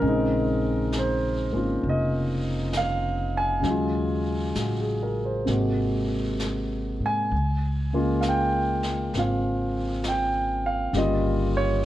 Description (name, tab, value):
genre	jazz ballad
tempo	66 BPM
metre	4/4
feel	swing 66% on 8ths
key	unclear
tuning	A4 = 444 Hz
part	warm concert grand piano	accompaniment	0.0-11.8 s	C3 to Ab5	-24 LUFS	equal	none
part	upright bass	bass	0.0-11.8 s	F1 to Ab2	-28 LUFS	equal	none
part	jazz brush drum kit	drums	0.0-11.8 s	brushed snare drum, hi-hat, snare drum	-38 LUFS	left 1 dB	none
room	light reverb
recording	worn, warbling old tape, cassette tape, warbly pitch drift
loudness	-23 LUFS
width	side -13 dB against mid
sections	0.0-11.8 A section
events	none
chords	0.0 Bbm11; 3.6 Ebm11; 5.5 Ab9; 7.3 Db6; 10.9 Gm7b5